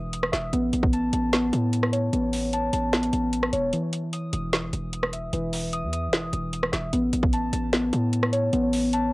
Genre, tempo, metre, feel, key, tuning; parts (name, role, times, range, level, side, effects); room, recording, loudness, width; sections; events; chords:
hip hop, trap; 150 BPM; 4/4; half-time; A4 = 440 Hz
muted felt-like synth keys; arpeggios; 0.0-9.1 s; E3 to D#6; -25 LUFS; left 1 dB; chorus, cassette tape, analog delay
hard-hitting 808-style bass; bass; 0.0-9.1 s; E1 to A2; -29 LUFS; equal
trap drum kit; drums; 0.1-9.0 s; hi-hat, kick drum, rim click, snare drum; -26 LUFS; equal
little or no reverb; home recording on cassette; -22 LUFS; side -21 dB against mid
0.0-9.1 A section
break 3.7-4.1
0.0 N.C.; 0.5 Aadd9; 3.7 N.C.; 6.9 Aadd9